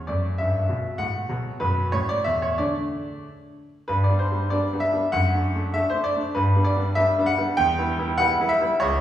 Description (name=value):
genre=classical-period piano sonatina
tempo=98 BPM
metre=2/4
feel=rubato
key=D major, G major from 3.9 s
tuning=A4 = 437 Hz
part: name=clear concert grand piano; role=solo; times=0.0-9.0 s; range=C#2 to G5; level=-21 LUFS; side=equal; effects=none
room=wet recital hall reverb, RT60 1.7 s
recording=heard from further back in the room, small room reverb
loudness=-20 LUFS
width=side -11 dB against mid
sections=0.0-3.9 A section; 3.9-9.0 B section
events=none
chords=0.1 Gmaj13/F#; 1.3 B5; 1.9 A5; 2.6 D5; 3.9 G; 5.1 D/F#; 6.4 G; 7.6 Em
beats=| 0.08 0.69 | 1.30 1.93 | 2.58 3.24 | 3.89 4.52 | 5.13 5.75 | 6.36 6.98 | 7.58 8.19 | 8.80